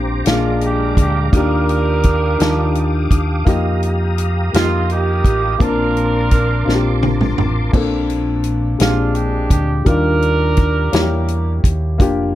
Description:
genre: slow gospel.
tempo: 56 BPM (dotted quarters).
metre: 6/8.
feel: straight.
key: Bb major.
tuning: A4 = 440 Hz.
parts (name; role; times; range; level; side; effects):
warm upright piano; accompaniment; 0.0-12.3 s; Bb2 to A5; -20 LUFS; left 3 dB; plate reverb.
tonewheel organ; sustained chords; 0.0-7.7 s; Ab3 to Eb6; -26 LUFS; right 1 dB; fast rotary speaker, chorus vibrato, plate reverb.
fingered electric bass; bass; 0.0-12.3 s; F1 to F2; -19 LUFS; equal; none.
warm horn section; melody; 0.3-11.6 s; Ab3 to Bb4; -20 LUFS; right 4 dB; slapback echo, plate reverb.
natural country drum kit; drums; 0.3-12.2 s; crash cymbal, hi-hat, kick drum, snare drum, toms; -16 LUFS; equal; none.
room: light reverb, small room ambience.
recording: none.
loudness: -14 LUFS.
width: side -14 dB against mid.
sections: 0.0-7.7 A section; 7.7-12.3 A section.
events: drum fill 6.7-7.7.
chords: 0.3 Bb7; 1.3 Ebmaj9; 3.5 F9sus4; 5.6 Bbmaj9; 8.8 Bb13; 9.9 Ebmaj9; 10.9 Edim7.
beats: 0.27 | 1.33 2.40 | 3.47 4.54 | 5.60 6.67 | 7.74 8.80 | 9.87 10.93 | 12.00.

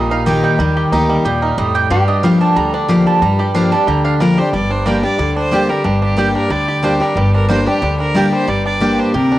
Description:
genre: bluegrass.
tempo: 182 BPM.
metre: 4/4.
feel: straight.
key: G minor.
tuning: A4 = 441 Hz.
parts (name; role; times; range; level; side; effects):
lap resonator guitar; second line; 0.0-4.3 s; G4 to Bb4; -25 LUFS; equal; cassette tape.
picked steel-string acoustic guitar; accompaniment; 0.0-9.4 s; G2 to G4; -14 LUFS; left 1 dB; cassette tape.
bluegrass banjo; arpeggios; 0.0-9.4 s; G3 to G4; -21 LUFS; right 2 dB; cassette tape.
mandolin; stabs; 0.0-8.9 s; Bb3 to Bb5; -21 LUFS; right 6 dB; cassette tape.
upright bass; bass; 0.0-9.4 s; G1 to G2; -23 LUFS; equal; none.
clear fiddle; melody; 4.2-9.4 s; G4 to D5; -21 LUFS; right 1 dB; cassette tape, analog delay.
room: light reverb, small room reverb.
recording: home recording on cassette.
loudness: -12 LUFS.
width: side -14 dB against mid.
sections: 0.0-4.5 A section; 4.5-9.4 B section.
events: mandolin solo 0.0-4.5.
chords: 0.0 Eb; 1.9 Gm7; 4.5 Gm.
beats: 0.27 | 0.60 0.93 1.25 1.58 | 1.91 2.24 2.56 2.89 | 3.22 3.55 3.88 4.21 | 4.53 4.86 5.19 5.52 | 5.85 6.18 6.51 6.84 | 7.17 7.50 7.83 8.15 | 8.48 8.81 9.14.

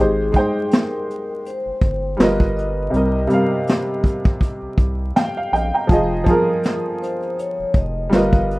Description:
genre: lo-fi hip hop.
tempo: 81 BPM.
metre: 4/4.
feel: swing 56% on 16ths.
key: unclear.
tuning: A4 = 439 Hz.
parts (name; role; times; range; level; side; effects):
vibraphone with soft mallets; melody; 0.0-8.6 s; Ab4 to F5; -26 LUFS; left 2 dB; plate reverb.
clear upright piano; accompaniment; 0.0-8.6 s; C3 to Bb5; -19 LUFS; right 1 dB; cassette tape, plate reverb.
round analog bass; bass; 0.0-8.6 s; F1 to C2; -24 LUFS; equal; none.
vintage brush drum kit; drums; 0.3-8.6 s; hi-hat, kick drum, snare drum; -17 LUFS; equal; none.
room: light reverb.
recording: rough home demo mix, vinyl crackle.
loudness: -17 LUFS.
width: side -21 dB against mid.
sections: 0.0-8.6 A section.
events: upright piano fill 4.8-5.9.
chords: 0.0 Abmaj7; 2.2 G7alt; 2.9 Cm7; 5.9 Fm7.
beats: 0.71 1.45 2.19 | 2.93 3.67 4.41 5.15 | 5.89 6.63 7.37 8.11.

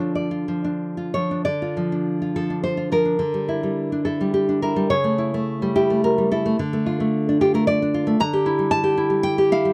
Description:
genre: romantic piece for solo classical guitar.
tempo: 90-114 BPM.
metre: 3/4.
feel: rubato.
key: D minor.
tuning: A4 = 441 Hz.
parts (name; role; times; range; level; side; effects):
nylon-string guitar; solo; 0.0-9.7 s; C#3 to Bb5; -21 LUFS; equal; none.
room: light reverb.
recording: dry, close 1970s-style studio recording.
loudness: -21 LUFS.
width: mono.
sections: 0.0-1.5 A section; 1.5-9.7 A section.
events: none.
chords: 0.0 Dm; 3.2 Em7b5/D; 4.9 A7/C#; 6.6 Dm; 8.2 Em7b5/D.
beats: 0.16 0.82 | 1.47 2.07 2.64 | 3.21 3.78 4.36 | 4.92 5.48 6.03 | 6.58 7.13 7.66 | 8.19 8.72 9.26.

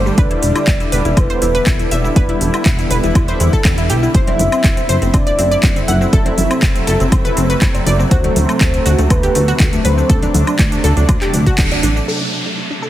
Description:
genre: progressive house.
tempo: 121 BPM.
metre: 4/4.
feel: straight.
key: E minor.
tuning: A4 = 440 Hz.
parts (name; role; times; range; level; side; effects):
shimmering ambient pad; sustained chords; 0.0-12.9 s; C3 to G4; -22 LUFS; right 1 dB; chorus, built-in reverb, sidechain pumping.
plucky analog bass; bass; 0.0-12.0 s; D1 to E2; -17 LUFS; equal; sidechain pumping.
analog pluck; arpeggios; 0.1-12.9 s; G3 to F#5; -20 LUFS; equal; chorus, sidechain pumping, tape echo.
house drum kit; drums; 0.1-12.9 s; handclaps, hi-hat, shaker, woodblock; -22 LUFS; equal; overdrive, low-pass filter on toms, low-pass filter on hats, low-pass filter on perc, low-pass filter on snare, low-pass filter on room.
warm velvety synth lead; melody; 0.2-10.5 s; B4 to E5; -21 LUFS; equal; chorus, tremolo, cassette tape, sidechain pumping, tape echo.
electronic kick drum; drums; 0.2-11.7 s; none; -14 LUFS; equal; none.
congas and cowbell; percussion; 4.3-11.9 s; none; -23 LUFS; left 2 dB; sidechain pumping on perc.
downlifter; sound effects; 12.1-12.9 s; none; -21 LUFS; equal; none.
room: light reverb.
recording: heavily compressed radio sound.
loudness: -12 LUFS.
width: side -13 dB against mid.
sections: 0.0-12.1 A section.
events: band accent 11.6.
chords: 0.2 Em7; 4.1 F#m7b5; 8.1 D7; 12.1 Gsus2.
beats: | 0.18 0.68 1.17 1.67 | 2.16 2.66 3.15 3.65 | 4.15 4.64 5.14 5.63 | 6.13 6.63 7.12 7.62 | 8.11 8.61 9.11 9.60 | 10.10 10.59 11.09 11.58 | 12.08 12.58.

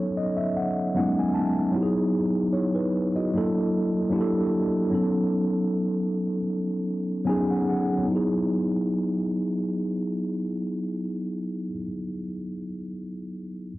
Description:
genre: hip hop.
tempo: 76 BPM.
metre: 4/4.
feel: swing 55% on 16ths.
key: E major.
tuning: A4 = 440 Hz.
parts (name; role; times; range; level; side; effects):
mellow tine electric piano; solo; 0.0-13.7 s; F#3 to A5; -24 LUFS; equal; medium stereo tremolo, cassette tape, low-pass filter.
room: moderate small room reverb, RT60 0.6 s.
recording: home recording on cassette.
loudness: -23 LUFS.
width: side -17 dB against mid.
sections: 0.0-8.1 A section; 8.1-11.2 B section.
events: tine electric piano fill 0.0-1.7, 6.9-8.1.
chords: 0.0 B9/F#; 1.7 Emaj9; 3.3 F#7alt; 4.9 B9/F#; 8.1 Emaj9.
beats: 0.16 0.95 | 1.74 2.53 3.32 4.11 | 4.90 5.69 6.48 7.27 | 8.06 8.85 9.64 10.43.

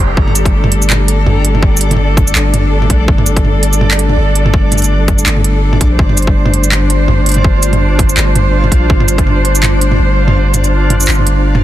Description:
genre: half-time drum and bass.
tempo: 165 BPM.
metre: 4/4.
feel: swing 56% on 16ths, half-time.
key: unclear.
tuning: A4 = 442 Hz.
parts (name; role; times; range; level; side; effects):
dark studio cello section; sustained chords; 0.0-11.6 s; G3 to C5; -17 LUFS; left 1 dB; sidechain pumping.
long sustained 808-style bass; bass; 0.0-11.6 s; G1 to Bb1; -12 LUFS; equal; none.
backwards swelling texture; texture; 0.0-11.6 s; D4 to Bb5; -20 LUFS; right 1 dB; built-in reverb.
electronic kick drum; drums; 0.2-9.2 s; none; -12 LUFS; equal; overdrive.
organic electronic drum kit; drums; 0.3-11.6 s; handclaps, hi-hat, shaker, toms; -15 LUFS; right 1 dB; overdrive.
room: little or no reverb.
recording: dense, heavily limited modern master.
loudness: -9 LUFS.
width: side -13 dB against mid.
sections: 0.0-11.6 A section.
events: kick drops out 10.4-11.6.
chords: 0.0 G5.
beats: | 0.17 0.54 0.90 1.26 | 1.63 1.99 2.36 2.72 | 3.08 3.45 3.81 4.17 | 4.54 4.90 5.26 5.63 | 5.99 6.36 6.72 7.08 | 7.45 7.81 8.17 8.54 | 8.90 9.27 9.63 9.99 | 10.36 10.72 11.08 11.45.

